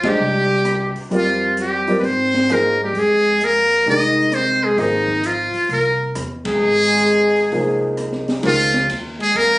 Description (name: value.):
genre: modal jazz.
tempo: 131 BPM.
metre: 4/4.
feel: swing 66% on 8ths.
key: F dorian.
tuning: A4 = 440 Hz.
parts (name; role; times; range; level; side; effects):
trumpet with metal mute; melody; 0.0-9.6 s; Eb4 to Eb5; -17 LUFS; equal; none.
dark trombone; second line; 0.0-9.6 s; Eb3 to Eb4; -21 LUFS; equal; none.
warm grand piano; accompaniment; 0.0-8.7 s; Eb3 to Eb5; -20 LUFS; equal; none.
upright bass; bass; 0.0-9.6 s; Ab1 to Ab2; -29 LUFS; equal; none.
open jazz drum kit; drums; 0.0-9.5 s; hi-hat, kick drum, ride cymbal, rim click, snare drum; -29 LUFS; equal; none.
room: moderate club reverb, RT60 0.7 s.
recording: recorded on a phone in the room, studio reverb, compression, nothing above 10.4 kHz.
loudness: -15 LUFS.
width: side -20 dB against mid.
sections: 0.0-8.4 A section; 8.4-9.6 B section.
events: band accent 0.0, 6.4.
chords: 0.0 Fm11; 8.4 Bbm7.